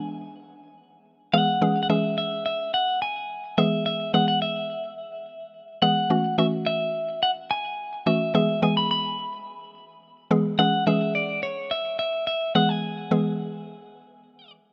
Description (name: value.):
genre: pop.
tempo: 107 BPM.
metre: 4/4.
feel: straight.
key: unclear.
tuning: A4 = 440 Hz.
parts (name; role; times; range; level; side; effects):
clean electric guitar; melody; 0.0-14.5 s; C#5 to B5; -27 LUFS; equal; none.
mallet-like synth pluck; accompaniment; 0.0-13.6 s; E3 to G#4; -26 LUFS; equal; chorus.
room: light reverb.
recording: rough home demo mix.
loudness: -24 LUFS.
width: mono.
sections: 0.0-14.7 A section.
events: none.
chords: 0.0 E; 1.6 C#m; 3.6 E; 6.1 F#m7; 8.3 E; 10.6 C#m; 12.6 E.